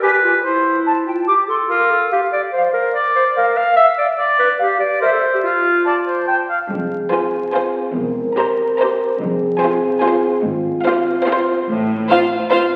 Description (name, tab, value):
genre	cinematic, playful, whimsical film cue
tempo	145 BPM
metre	3/4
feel	straight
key	F minor from 6.7 s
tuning	A4 = 440 Hz
part	clear clarinet	second line	0.0-6.5 s	E4 to F5	-20 LUFS	equal	none
part	clear oboe	second line	0.0-6.6 s	F4 to G5	-20 LUFS	equal	none
part	small flute group	second line	0.0-6.4 s	E5 to D6	-23 LUFS	equal	none
part	mellow French horn section	sustained chords	6.7-12.7 s	C4 to Bb4	-22 LUFS	equal	none
part	clear studio cello section	bass	6.7-12.0 s	E2 to A2	-27 LUFS	equal	none
part	warm chamber double bass section	bass	6.7-12.0 s	E1 to A1	-34 LUFS	equal	none
part	warm symphonic violin section	melody	7.1-12.6 s	F5 to Bb5	-25 LUFS	equal	none
part	rich chamber violin section	second line	7.1-12.6 s	C5	-23 LUFS	equal	none
part	rich chamber viola section	accompaniment	7.1-12.6 s	F4 to G4	-24 LUFS	equal	none
room	wet scoring stage reverb, RT60 1.7 s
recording	very old 78 rpm record, vinyl crackle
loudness	-17 LUFS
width	mono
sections	0.0-6.7 A section; 6.7-12.8 B section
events	none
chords	0.0 F(b5, no3); 0.4 C/E; 1.7 N.C.; 6.7 Fm; 8.0 C7/E; 9.2 Fm; 10.4 Fm/Ab; 11.7 F/A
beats	0.02 | 0.44 0.86 1.28 | 1.70 2.12 2.53 | 2.95 3.36 3.77 | 4.19 4.60 5.02 | 5.44 5.86 6.29 | 6.71 7.12 7.54 | 7.95 8.37 8.78 | 9.19 9.61 10.02 | 10.43 10.85 11.26 | 11.67 12.09 12.50